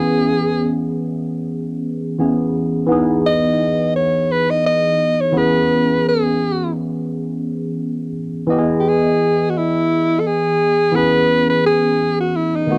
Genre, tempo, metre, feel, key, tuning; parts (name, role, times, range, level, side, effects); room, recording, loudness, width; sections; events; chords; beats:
soul; 86 BPM; 4/4; swing 54% on 16ths; A4 = 436 Hz
warm alto saxophone; melody; 0.0-12.8 s; D#4 to D#5; -19 LUFS; equal
barky tine electric piano; accompaniment; 0.0-12.8 s; D#3 to D#5; -20 LUFS; equal; overdrive, phaser
small room ambience; dry, close 1970s-style studio recording; -18 LUFS; mono
0.0-12.8 A section
0.0 C#m7/E; 2.9 Emaj7; 5.3 C#m7/E; 8.5 Emaj7; 10.9 C#m7/E
| 0.09 0.79 1.49 2.19 | 2.89 3.59 4.29 4.99 | 5.69 6.39 7.09 7.79 | 8.49 9.20 9.89 10.60 | 11.29 12.00 12.70